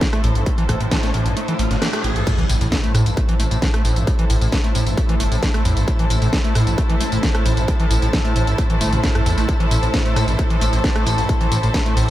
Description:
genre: driving peak-time techno.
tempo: 133 BPM.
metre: 4/4.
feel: straight.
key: A minor.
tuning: A4 = 440 Hz.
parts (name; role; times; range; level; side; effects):
overdriven acid bass; riff; 0.0-12.1 s; G2 to A3; -23 LUFS; equal; analog chorus, sidechain pumping, tape echo.
overtone-sweeping drone; drone; 0.0-12.1 s; A2; -28 LUFS; left 1 dB; chorus, built-in reverb, phaser, sidechain pumping.
electronic kick drum; drums; 0.0-11.8 s; none; -20 LUFS; equal; distortion.
techno drum kit; drums; 0.0-12.1 s; crash cymbal, hi-hat, rim click, snare drum, tambourine; -25 LUFS; equal; sidechain pumping on hats, sidechain pumping on cymbals, sidechain pumping on perc.
riser and impact; sound effects; 0.3-4.1 s; none; -28 LUFS; equal; none.
muted studio string section; texture; 0.0-12.1 s; E4 to A5; -26 LUFS; equal; sidechain pumping.
detuned saw bass; bass; 0.2-12.0 s; G1 to A2; -21 LUFS; equal; sidechain pumping.
room: light reverb.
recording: none.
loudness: -16 LUFS.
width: side -14 dB against mid.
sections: 0.0-2.3 A section; 2.3-12.1 B section.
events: riser 0.3-2.3; kick drops out 1.4-2.3; band accent 1.8; drop 2.3-12.1; impact 2.3-4.1.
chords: 0.0 Am.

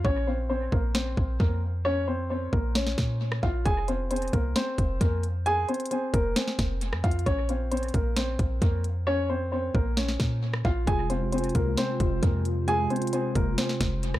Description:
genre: hip hop, trap.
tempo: 133 BPM.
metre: 4/4.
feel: half-time.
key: F minor.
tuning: A4 = 440 Hz.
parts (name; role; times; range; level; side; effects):
dark baby grand piano; melody; 0.0-14.2 s; Bb3 to Ab5; -29 LUFS; left 1 dB; low-pass filter, dub echo.
clean 808-style bass; bass; 0.0-14.2 s; F1 to Bb2; -28 LUFS; equal; none.
trap drum kit; drums; 0.0-14.2 s; hi-hat, kick drum, rim click, snare drum; -28 LUFS; equal; dub echo.
mellow tine electric piano; accompaniment; 10.9-14.2 s; C3 to F4; -29 LUFS; left 1 dB; ensemble chorus, low-pass filter, dub echo.
room: light reverb, digital ambience.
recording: echo-heavy mix.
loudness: -24 LUFS.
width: side -15 dB against mid.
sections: 0.0-14.2 A section.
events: break 0.0-3.7; hi-hats muted 9.1-10.9.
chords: 0.0 Bbm; 3.7 Fm; 7.3 Bbm; 10.9 Fm.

